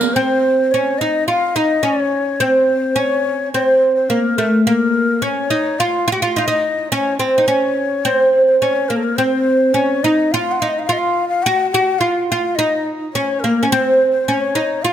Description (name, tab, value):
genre	Arabic maqam ensemble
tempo	106 BPM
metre	4/4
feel	straight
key	unclear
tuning	A4 = 440 Hz
part	oud	melody	0.0-14.9 s	A3 to Gb4+25c	-15 LUFS	right 1 dB	none
part	breathy ney	second line	0.0-14.9 s	A4 to Gb5+31c	-20 LUFS	left 5 dB	none
room	light reverb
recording	close, detailed microphones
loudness	-14 LUFS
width	side -10 dB against mid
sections	0.1-14.9 A section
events	none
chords	none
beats	| 0.14 0.71 1.27 1.83 | 2.40 2.96 3.53 4.09 | 4.65 5.22 5.78 6.35 | 6.91 7.47 8.04 8.60 | 9.17 9.73 10.30 10.86 | 11.43 11.99 12.56 13.12 | 13.69 14.25 14.82